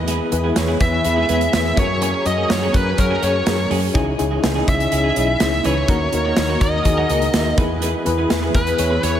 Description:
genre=1980s-style pop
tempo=124 BPM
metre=4/4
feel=straight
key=unclear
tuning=A4 = 439 Hz
part: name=FM electric piano with tremolo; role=accompaniment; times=0.0-9.2 s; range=A#3 to E5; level=-22 LUFS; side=left 4 dB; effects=slapback echo
part: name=warm analog pad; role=sustained chords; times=0.0-9.2 s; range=C#3 to B4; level=-28 LUFS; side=right 1 dB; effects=chorus
part: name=vintage muted fingered electric bass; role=bass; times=0.0-9.2 s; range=B1 to F#2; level=-23 LUFS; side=equal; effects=none
part: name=twelve-string electric guitar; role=riff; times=0.1-9.2 s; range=E3 to B4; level=-28 LUFS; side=right 4 dB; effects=wide subtle chorus, tape echo, slapback echo
part: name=modern studio drum kit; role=drums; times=0.1-9.1 s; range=hi-hat, kick drum, snare drum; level=-21 LUFS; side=right 1 dB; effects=none
part: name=bluesy overdriven lead guitar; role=melody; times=0.8-9.2 s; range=A#4 to E5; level=-22 LUFS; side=right 1 dB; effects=distortion
room=moderate lush hall reverb, RT60 2.2 s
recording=big arena sound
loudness=-16 LUFS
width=side -10 dB against mid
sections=0.0-9.2 A section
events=FM electric piano fill 7.1-7.8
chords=0.0 E; 1.8 F#add9; 4.0 C#madd9; 5.9 D#m; 7.6 E

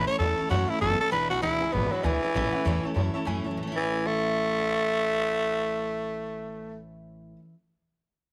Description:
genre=rock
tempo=196 BPM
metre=4/4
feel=swing 61% on 8ths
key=A major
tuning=A4 = 441 Hz
part: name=growling tenor saxophone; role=melody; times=0.0-6.8 s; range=E3 to C#5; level=-28 LUFS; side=equal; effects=none
part: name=picked steel-string acoustic guitar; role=accompaniment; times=0.0-7.5 s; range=E2 to E4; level=-36 LUFS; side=equal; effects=none
part: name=upright bass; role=bass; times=0.0-7.3 s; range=E1 to F#2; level=-33 LUFS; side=equal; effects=none
part: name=honky-tonk upright piano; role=accompaniment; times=0.1-7.4 s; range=B4 to B5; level=-42 LUFS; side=equal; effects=none
room=light reverb, small room reverb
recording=none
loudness=-27 LUFS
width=mono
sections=0.0-1.1 A section; 1.1-3.6 B section; 3.6-6.0 C section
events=none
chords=0.0 A; 1.1 E7; 2.3 A

